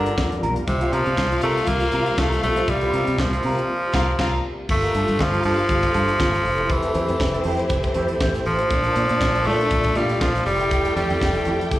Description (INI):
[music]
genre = disco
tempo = 120 BPM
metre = 4/4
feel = swing 56% on 16ths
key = F major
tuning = A4 = 440 Hz
[part]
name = raspy tenor saxophone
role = melody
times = 0.0-11.7 s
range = C3 to Bb3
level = -22 LUFS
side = equal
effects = slapback echo
[part]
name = warm studio violin section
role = second line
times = 0.0-11.8 s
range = C4 to G5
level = -28 LUFS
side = left 1 dB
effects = slapback echo
[part]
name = mellow electric guitar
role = accompaniment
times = 0.0-11.7 s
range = A3 to C5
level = -31 LUFS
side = right 4 dB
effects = wah, lush chorus, slapback echo
[part]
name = dark studio string section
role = sustained chords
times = 0.0-11.8 s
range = Bb2 to Bb4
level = -28 LUFS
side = left 1 dB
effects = none
[part]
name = fingered electric bass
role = bass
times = 0.0-11.8 s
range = F1 to C3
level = -24 LUFS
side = equal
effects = none
[part]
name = tight funk drum kit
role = drums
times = 0.1-11.8 s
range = crash cymbal, hi-hat, kick drum, snare drum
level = -26 LUFS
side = equal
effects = none
[sound]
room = light reverb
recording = live gig heard through the venue's PA, club reverb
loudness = -18 LUFS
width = side -15 dB against mid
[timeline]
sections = 0.0-4.7 A section; 4.7-11.8 B section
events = band accent 3.7-4.7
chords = 0.0 Gm7; 0.7 C7sus4; 4.7 Gm9; 6.4 Fmaj9; 8.7 Bbmaj7; 10.5 Fmaj9